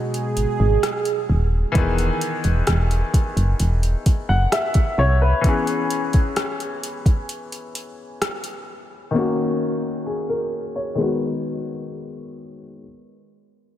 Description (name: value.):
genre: contemporary R&B.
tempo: 65 BPM.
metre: 4/4.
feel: straight.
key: G# minor.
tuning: A4 = 440 Hz.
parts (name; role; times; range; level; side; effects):
bright grand piano; accompaniment; 0.0-12.8 s; D#3 to F#5; -24 LUFS; left 2 dB; low-pass filter.
warm analog pad; sustained chords; 0.0-1.7 s; B2 to G#4; -24 LUFS; right 6 dB; chorus, low-pass filter.
smooth R&B drum kit; drums; 0.1-8.7 s; hi-hat, kick drum, rim click; -21 LUFS; equal; none.
solid FM bass; bass; 0.4-5.3 s; D#1 to B#1; -18 LUFS; equal; none.
room: moderate lush hall reverb, RT60 3.0 s.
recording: dreamy mix soaked in reverb.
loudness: -18 LUFS.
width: side -12 dB against mid.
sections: 0.0-12.8 A section.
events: filter sweep 0.0-12.8.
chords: 0.0 G#m7; 1.8 Emaj7; 5.4 C#m7; 9.1 D#m7; 11.0 G#m7.